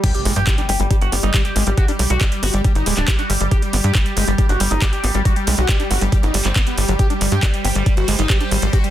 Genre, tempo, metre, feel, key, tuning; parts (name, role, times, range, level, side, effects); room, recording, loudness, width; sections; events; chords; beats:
psychedelic trance; 138 BPM; 4/4; straight; A4 = 440 Hz
overdriven synth lead; melody; 0.0-8.9 s; G3 to G4; -24 LUFS; left 1 dB; phaser, cassette tape, sidechain pumping, tape echo
swarming drone; sustained chords; 0.8-8.9 s; G3 to C5; -27 LUFS; right 2 dB; built-in reverb, sidechain pumping
screaming distorted acid line; riff; 0.0-8.8 s; F#3 to G4; -26 LUFS; moving between left 7 dB and right 5 dB; distortion, chorus, auto-pan, sidechain pumping, tape echo
electronic kick drum; drums; 0.0-8.8 s; -17 LUFS; equal; overdrive
garage drum kit; drums; 0.0-8.9 s; crash cymbal, handclaps, hi-hat; -23 LUFS; right 1 dB; overdrive
swell and impact; sound effects; 0.0-1.8 s; -29 LUFS; equal
tight sequencer bass; bass; 0.3-8.7 s; D1 to G2; -19 LUFS; equal
little or no reverb; dense, heavily limited modern master; -15 LUFS; side -12 dB against mid
0.0-8.9 A section
drop 0.0-8.9; impact 0.0-1.8
0.0 G5
| 0.04 0.47 0.91 1.34 | 1.77 2.21 2.65 3.08 | 3.51 3.95 4.38 4.82 | 5.25 5.69 6.12 6.56 | 6.99 7.43 7.86 8.30 | 8.73